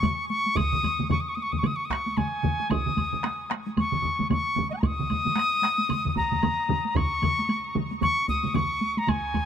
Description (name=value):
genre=japanese traditional, taiko drum ensemble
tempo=113 BPM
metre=4/4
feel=swing 60% on 16ths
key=unclear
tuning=A4 = 440 Hz
part: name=bright reedy wooden piccolo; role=melody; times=0.0-9.5 s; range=Eb5 to Eb6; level=-26 LUFS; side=left 2 dB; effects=none
part: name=taiko ensemble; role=percussion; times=0.0-9.5 s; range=none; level=-30 LUFS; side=right 1 dB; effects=none
part: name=taiko ensemble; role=percussion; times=0.0-9.5 s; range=none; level=-32 LUFS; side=left 4 dB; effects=none
part: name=taiko ensemble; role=percussion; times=0.0-9.5 s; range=none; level=-32 LUFS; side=right 4 dB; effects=none
part: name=woodblock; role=percussion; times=0.0-9.5 s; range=none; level=-39 LUFS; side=right 5 dB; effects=none
part: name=taiko ensemble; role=percussion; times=0.6-9.5 s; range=none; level=-31 LUFS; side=right 2 dB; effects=none
room=light reverb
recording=none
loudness=-23 LUFS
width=side -8 dB against mid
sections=0.0-9.5 A section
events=none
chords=none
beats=0.04 | 0.57 1.10 1.64 2.17 | 2.71 3.24 3.77 4.30 | 4.84 5.37 5.90 6.43 | 6.96 7.49 8.02 8.55 | 9.08